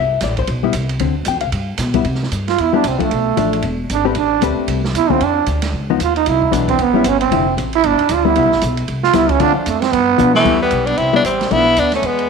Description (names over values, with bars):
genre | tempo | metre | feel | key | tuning
jazz, small-group swing and bop | 228 BPM | 4/4 | swing 59% on 8ths | C major | A4 = 438 Hz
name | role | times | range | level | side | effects
hollow-body jazz guitar | accompaniment | 0.0-11.7 s | D3 to G5 | -19 LUFS | left 11 dB | none
upright bass | bass | 0.0-12.3 s | E1 to C3 | -21 LUFS | equal | none
open jazz drum kit | drums | 0.2-12.2 s | crash cymbal, hi-hat, kick drum, ride cymbal, snare drum | -26 LUFS | right 4 dB | none
growling trombone | second line | 2.5-12.3 s | E3 to F4 | -16 LUFS | right 8 dB | none
clear tenor saxophone | melody | 10.4-12.3 s | A3 to E4 | -15 LUFS | left 4 dB | none
room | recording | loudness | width
wet echo chamber reverb, RT60 1.5 s, small room ambience | 1960s-style stereo with parts hard left and right | -13 LUFS | side -5 dB against mid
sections
0.0-2.1 A section; 2.1-10.5 A section; 10.5-12.3 B section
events
trombone solo 2.1-10.5; drum fill 10.2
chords
0.0 Cmaj7; 1.0 Dm7; 1.5 G; 2.1 C; 3.1 Bm7b5; 3.6 E; 4.2 Am9; 5.2 Dm; 5.7 Db9; 6.3 Cmaj9; 6.8 A7; 7.3 Dm9; 7.8 G; 8.4 Cmaj7; 9.4 Dm7; 9.9 G7; 10.5 Cmaj7; 11.5 Bm7b5